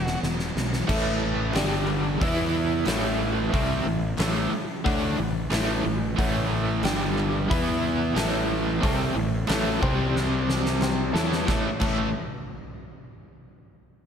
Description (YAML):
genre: classic rock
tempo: 90 BPM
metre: 4/4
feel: straight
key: unclear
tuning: A4 = 440 Hz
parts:
  - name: crunchy overdriven guitar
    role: riff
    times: 0.0-12.1 s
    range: E2 to E4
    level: -30 LUFS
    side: right 8 dB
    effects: slapback echo
  - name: overdriven semi-hollow guitar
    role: riff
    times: 0.0-12.1 s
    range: G2 to E4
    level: -30 LUFS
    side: left 8 dB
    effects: spring reverb
  - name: fuzz fingered electric bass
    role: bass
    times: 0.0-12.1 s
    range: E1 to E2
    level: -30 LUFS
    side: equal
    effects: overdrive
  - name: huge arena drum kit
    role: drums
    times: 0.1-12.0 s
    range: crash cymbal, hi-hat, kick drum, snare drum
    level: -28 LUFS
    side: equal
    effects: none
  - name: warm upright piano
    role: accompaniment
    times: 0.9-12.1 s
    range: B3 to C#6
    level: -33 LUFS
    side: left 3 dB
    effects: slapback echo
  - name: overdriven electric guitar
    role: riff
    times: 0.9-12.1 s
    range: G2 to E4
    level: -30 LUFS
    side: right 1 dB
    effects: tremolo, slapback echo
  - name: group handclap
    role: percussion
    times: 1.5-12.1 s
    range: none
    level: -43 LUFS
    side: right 4 dB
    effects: none
room: moderate recital hall reverb, RT60 1.3 s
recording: big arena sound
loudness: -22 LUFS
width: side -8 dB against mid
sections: 0.9-11.5 A section; 11.5-14.1 B section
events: drum fill 0.0-0.9, 10.2-11.5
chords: 0.0 E; 0.9 A; 1.5 G5; 2.2 E5; 2.9 A; 6.8 G5; 7.5 E5; 8.2 A; 9.8 C5; 11.2 A